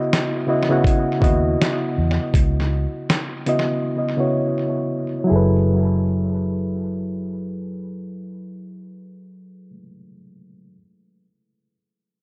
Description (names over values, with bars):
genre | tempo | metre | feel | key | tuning
lo-fi hip hop | 81 BPM | 4/4 | swing 61% on 16ths | F# dorian | A4 = 439 Hz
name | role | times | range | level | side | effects
barky reed electric piano | accompaniment | 0.0-10.8 s | C#3 to F#5 | -24 LUFS | equal | low-pass filter, tape echo
dusty soul sampler-style drum kit | drums | 0.1-3.7 s | hi-hat, kick drum, snare drum | -24 LUFS | equal | vintage 12-bit sampler grit, tape echo
vintage muted fingered electric bass | bass | 1.2-9.7 s | F#1 to E2 | -24 LUFS | equal | none
room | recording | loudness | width
light reverb | echo-heavy mix, cassette tape | -21 LUFS | mono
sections
0.0-5.3 A section; 5.3-8.3 B section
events
filter sweep on reed electric piano 0.0-5.3; drums muted 3.8-5.3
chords
0.0 C#m11; 5.3 F#m11